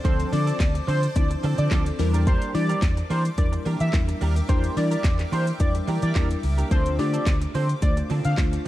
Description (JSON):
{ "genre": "dance-pop", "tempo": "108 BPM", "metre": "4/4", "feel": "straight", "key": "unclear", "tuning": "A4 = 440 Hz", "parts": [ { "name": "octave-doubled lead", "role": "melody", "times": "0.0-8.4 s", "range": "C5 to F5", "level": "-30 LUFS", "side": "equal", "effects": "chorus, sidechain pumping, digital delay" }, { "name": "glassy wavetable pluck", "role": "accompaniment", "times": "0.0-8.7 s", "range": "F3 to C5", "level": "-30 LUFS", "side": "left 2 dB", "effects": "chorus, sidechain pumping" }, { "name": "granular cloud pad", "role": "sustained chords", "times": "0.0-8.7 s", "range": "Bb4 to D6", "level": "-38 LUFS", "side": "equal", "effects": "built-in reverb, sidechain pumping" }, { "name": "direct-recorded clean electric guitar", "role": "riff", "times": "0.0-8.7 s", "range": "F3 to Bb4", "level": "-34 LUFS", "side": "right 7 dB", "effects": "ensemble chorus" }, { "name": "vintage muted fingered electric bass", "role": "bass", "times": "0.0-8.6 s", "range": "C#2 to E3", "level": "-24 LUFS", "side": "equal", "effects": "sidechain pumping" }, { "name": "house drum kit", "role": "drums", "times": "0.0-8.7 s", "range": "handclaps, hi-hat, kick drum, shaker, snare drum", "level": "-24 LUFS", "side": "equal", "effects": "none" } ], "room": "little or no reverb", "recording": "dark, warm production", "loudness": "-20 LUFS", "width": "side -15 dB against mid", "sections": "0.0-8.7 A section", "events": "none", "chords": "0.0 Dm7; 2.0 Em7b5; 6.7 Dm7" }